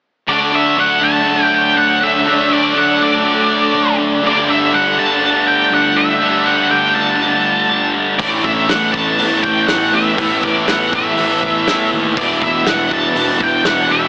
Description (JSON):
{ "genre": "rock, shoegaze and dream pop", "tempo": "121 BPM", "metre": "4/4", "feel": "straight", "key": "D major", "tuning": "A4 = 440 Hz", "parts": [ { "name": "octave-fuzz lead guitar", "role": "melody", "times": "0.3-14.1 s", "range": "D5 to A5", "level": "-14 LUFS", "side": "equal", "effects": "distortion, tape echo" }, { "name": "warbly tape-like pad", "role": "sustained chords", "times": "0.3-14.1 s", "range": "F#3 to E5", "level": "-22 LUFS", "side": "right 1 dB", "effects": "chorus, built-in reverb" }, { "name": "distorted electric guitar", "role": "riff", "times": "0.3-14.1 s", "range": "E2 to D4", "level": "-19 LUFS", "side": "equal", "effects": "overdrive" }, { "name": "thick fuzz guitar", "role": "riff", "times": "0.3-14.1 s", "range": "E2 to D4", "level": "-18 LUFS", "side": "left 1 dB", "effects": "distortion, lush chorus" }, { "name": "twangy electric guitar", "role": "riff", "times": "0.3-14.1 s", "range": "none", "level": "barely audible", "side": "none", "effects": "none" }, { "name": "fuzz picked electric bass", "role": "bass", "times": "8.2-14.1 s", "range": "E1 to A2", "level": "-22 LUFS", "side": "equal", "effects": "overdrive" }, { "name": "loose indie drum kit", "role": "drums", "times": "8.2-13.8 s", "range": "hi-hat, kick drum, snare drum", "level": "-22 LUFS", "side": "equal", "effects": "none" } ], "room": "wet cathedral reverb, RT60 6.2 s", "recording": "dreamy mix soaked in reverb, AM radio sound", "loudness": "-11 LUFS", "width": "side -24 dB against mid", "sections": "0.3-14.1 A section", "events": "none", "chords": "0.3 D; 4.2 Gsus2; 8.2 Asus2; 12.2 Em7" }